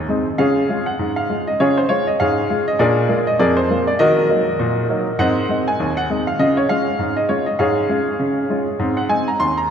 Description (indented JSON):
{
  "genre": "ragtime piano",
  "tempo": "100 BPM",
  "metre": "2/4",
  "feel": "swing 58% on 16ths",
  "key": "Db major",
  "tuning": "A4 = 440 Hz",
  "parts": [
    { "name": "clear grand piano", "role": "solo", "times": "0.0-9.7 s", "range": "Eb2 to C6", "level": "-16 LUFS", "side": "equal", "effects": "none" }
  ],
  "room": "wet cathedral reverb, RT60 5.3 s",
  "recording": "recorded in a church or concert hall",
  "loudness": "-16 LUFS",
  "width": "side -8 dB against mid",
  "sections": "0.4-9.7 A section",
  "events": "none",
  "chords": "0.4 Db; 2.8 Bb7; 4.0 Ebm; 5.2 Ab; 6.4 Db/Ab; 8.8 Ab"
}